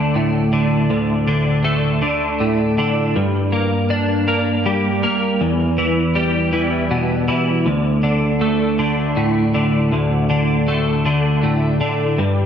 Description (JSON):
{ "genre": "rock", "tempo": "80 BPM", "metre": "3/4", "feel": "straight", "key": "unclear", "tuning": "A4 = 440 Hz", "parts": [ { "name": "twelve-string electric guitar", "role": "solo", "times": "0.0-12.5 s", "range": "D2 to D4", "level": "-15 LUFS", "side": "equal", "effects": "ensemble chorus, analog delay" } ], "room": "wet lush hall reverb, RT60 1.6 s, digital ambience", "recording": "big arena sound, nothing above 7.7 kHz", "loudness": "-15 LUFS", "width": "side -8 dB against mid", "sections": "0.0-12.5 A section", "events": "none", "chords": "0.0 D5; 3.2 Gm; 5.4 Em; 7.7 D5" }